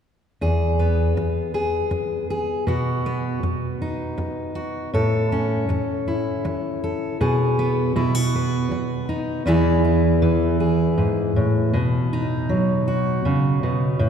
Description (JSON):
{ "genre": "folk", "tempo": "80 BPM", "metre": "3/4", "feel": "straight", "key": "E major", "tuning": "A4 = 442 Hz", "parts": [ { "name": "fingerpicked steel-string acoustic guitar", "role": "accompaniment", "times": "0.4-14.1 s", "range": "E2 to A4", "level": "-19 LUFS", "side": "equal", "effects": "none" } ], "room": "wet church reverb, RT60 3.4 s", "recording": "recorded in a church or concert hall", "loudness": "-19 LUFS", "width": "side -8 dB against mid", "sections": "0.4-9.5 A section; 9.5-14.1 B section", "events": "none", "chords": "0.4 E; 2.7 B; 4.9 A; 7.2 G#m/B; 8.0 B; 9.5 E; 11.7 B" }